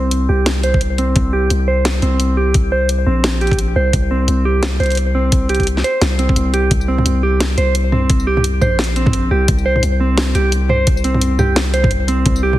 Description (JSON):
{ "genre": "half-time drum and bass", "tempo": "173 BPM", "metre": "4/4", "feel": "swing 59% on 16ths, half-time", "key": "unclear", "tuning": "A4 = 440 Hz", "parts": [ { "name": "mellow electric guitar", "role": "arpeggios", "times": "0.0-12.6 s", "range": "C4 to C5", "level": "-18 LUFS", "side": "right 1 dB", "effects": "low-pass filter, ping-pong delay" }, { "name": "long sustained 808-style bass", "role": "bass", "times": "0.0-12.6 s", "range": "Bb1 to C2", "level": "-16 LUFS", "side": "equal", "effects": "none" }, { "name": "drum and bass drum kit", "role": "drums", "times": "0.1-12.6 s", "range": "hi-hat, snare drum, tambourine, toms", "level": "-20 LUFS", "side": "equal", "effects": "none" }, { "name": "electronic kick drum", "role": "drums", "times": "0.7-12.3 s", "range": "none", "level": "-16 LUFS", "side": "equal", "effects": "none" } ], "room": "light reverb, digital ambience", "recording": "heavily compressed radio sound, multiband compression", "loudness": "-13 LUFS", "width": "side -15 dB against mid", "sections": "0.0-12.6 A section", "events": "filter sweep on clean electric guitar 0.0-12.6", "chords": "0.0 C5" }